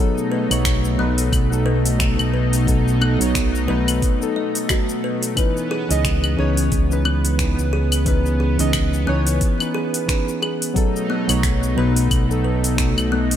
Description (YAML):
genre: sunset chillout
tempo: 89 BPM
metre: 4/4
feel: swing 57% on 16ths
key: unclear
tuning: A4 = 440 Hz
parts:
  - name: soft electric-piano-like synth keys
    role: accompaniment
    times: 0.0-13.4 s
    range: E3 to D#5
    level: -23 LUFS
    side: moving between left 4 dB and right 4 dB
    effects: chorus, auto-pan, tape echo
  - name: lush unison pad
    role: sustained chords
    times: 0.0-13.4 s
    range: B2 to D#4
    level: -25 LUFS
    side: left 1 dB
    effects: chorus
  - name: smooth R&B drum kit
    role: drums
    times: 0.2-13.4 s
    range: claves, finger snaps, hi-hat, shaker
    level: -25 LUFS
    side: left 2 dB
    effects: studio reverb
  - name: kalimba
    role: arpeggios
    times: 0.3-13.3 s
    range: B3 to D#5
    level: -29 LUFS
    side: equal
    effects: tape echo
  - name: overdriven fingered electric bass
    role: bass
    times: 0.5-13.4 s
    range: B1 to C#2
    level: -20 LUFS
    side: equal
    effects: none
  - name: electronic kick drum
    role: drums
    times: 0.7-12.9 s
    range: none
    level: -21 LUFS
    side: equal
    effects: studio reverb
room: light reverb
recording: none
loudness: -17 LUFS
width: side -10 dB against mid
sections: 0.0-13.4 A section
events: none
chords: 0.0 B7; 5.4 C#m9; 10.8 B7